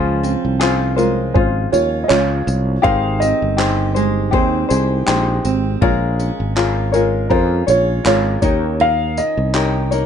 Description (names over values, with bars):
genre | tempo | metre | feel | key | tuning
acoustic pop | 81 BPM | 4/4 | swing 55% on 16ths | Ab major | A4 = 441 Hz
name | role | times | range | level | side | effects
tenor ukulele | accompaniment | 0.0-10.1 s | Db4 to Db5 | -20 LUFS | left 7 dB | none
picked steel-string acoustic guitar | arpeggios | 0.0-10.1 s | Eb3 to G4 | -24 LUFS | right 12 dB | none
sustaining fretless electric bass | bass | 0.0-10.1 s | G1 to F2 | -19 LUFS | equal | none
dusty soul sampler-style drum kit | drums | 0.2-10.1 s | handclaps, kick drum, tambourine | -22 LUFS | equal | none
group handclap | percussion | 0.6-9.7 s | none | -27 LUFS | right 2 dB | none
dark upright piano | melody | 1.0-10.1 s | Bb4 to F5 | -18 LUFS | right 1 dB | none
room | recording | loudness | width
light reverb | dark, warm production, nothing above 10.7 kHz | -14 LUFS | side -8 dB against mid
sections
0.0-10.1 A section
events
none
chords
0.0 Dbmaj7; 2.8 Abmaj7; 5.8 Bbm7; 8.4 Eb7